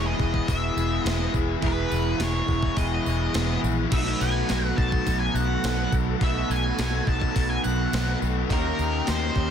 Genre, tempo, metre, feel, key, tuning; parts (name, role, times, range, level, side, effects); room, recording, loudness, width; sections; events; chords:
rock, shoegaze and dream pop; 105 BPM; 4/4; straight; E major; A4 = 439 Hz
octave-fuzz lead guitar; melody; 0.0-9.5 s; A#4 to A5; -30 LUFS; right 1 dB; distortion, tape echo
brassy analog pad; sustained chords; 0.0-9.5 s; E4 to D#6; -37 LUFS; right 1 dB; chorus
overdriven electric guitar; riff; 0.0-9.5 s; E2 to G#4; -31 LUFS; left 14 dB; analog chorus
overdriven electric guitar; riff; 0.0-9.5 s; B2 to G4; -34 LUFS; right 14 dB; reverse reverb
overdriven electric guitar; riff; 0.0-9.5 s; E2 to D#4; -30 LUFS; right 1 dB
vintage muted fingered electric bass; bass; 0.0-9.5 s; E1 to D#2; -27 LUFS; equal
gated 80s digital drum machine; drums; 0.2-9.4 s; crash cymbal, hi-hat, kick drum, snare drum; -28 LUFS; equal; gated reverb, gated reverb snare
tambourine; percussion; 0.2-9.4 s; -43 LUFS; right 19 dB
digital ambience; dense, heavily limited modern master; -22 LUFS; side -8 dB against mid
0.0-9.5 A section
0.0 Emaj7; 3.9 B5; 8.5 D#7